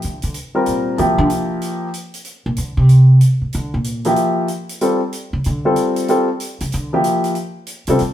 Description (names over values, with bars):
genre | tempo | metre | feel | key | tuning
modal jazz | 188 BPM | 4/4 | swing 64% on 8ths | unclear | A4 = 439 Hz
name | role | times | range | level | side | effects
upright bass | bass | 0.0-8.1 s | A2 to D3 | -15 LUFS | equal | none
hi-hat | drums | 0.0-8.1 s | none | -32 LUFS | right 1 dB | none
clear grand piano | accompaniment | 0.5-1.9, 4.1-8.0 s | F3 to Bb4 | -16 LUFS | left 1 dB | none
room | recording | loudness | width
moderate stone room reverb, RT60 1.0 s | band playing live in one room | -14 LUFS | side -12 dB against mid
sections
0.0-8.1 A section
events
upright bass solo 0.0-8.1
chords
0.0 Bbadd9; 1.0 Dm7; 3.5 Bbmaj9; 6.1 Dm7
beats
0.03 0.34 0.66 | 0.98 1.30 1.62 1.94 | 2.26 2.58 2.90 3.21 | 3.53 3.85 4.17 4.49 | 4.81 5.13 5.45 5.76 | 6.08 6.40 6.72 7.04 | 7.36 7.67 7.99